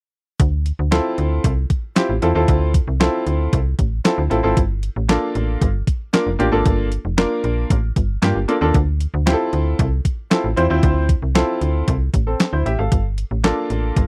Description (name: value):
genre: early-eighties boogie funk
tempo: 115 BPM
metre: 4/4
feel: straight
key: D minor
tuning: A4 = 440 Hz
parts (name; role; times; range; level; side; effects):
- slap-like FM bass; bass; 0.4-14.1 s; F1 to G2; -22 LUFS; equal; none
- clean 12-bit digital drum machine; drums; 0.4-14.1 s; handclaps, hi-hat, kick drum, snare drum; -21 LUFS; equal; overdrive
- bright grand piano; accompaniment; 0.9-14.0 s; Bb3 to F5; -22 LUFS; equal; none
room: little or no reverb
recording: dry, close 1970s-style studio recording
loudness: -19 LUFS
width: mono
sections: 0.4-14.1 A section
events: none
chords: 0.4 Dm9; 4.6 Gm9; 8.7 Dm9; 12.9 Gm9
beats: | 0.40 0.92 1.44 1.96 | 2.48 3.01 3.53 4.05 | 4.57 5.09 5.61 6.14 | 6.66 7.18 7.70 8.22 | 8.74 9.27 9.79 10.31 | 10.83 11.35 11.88 12.40 | 12.92 13.44 13.96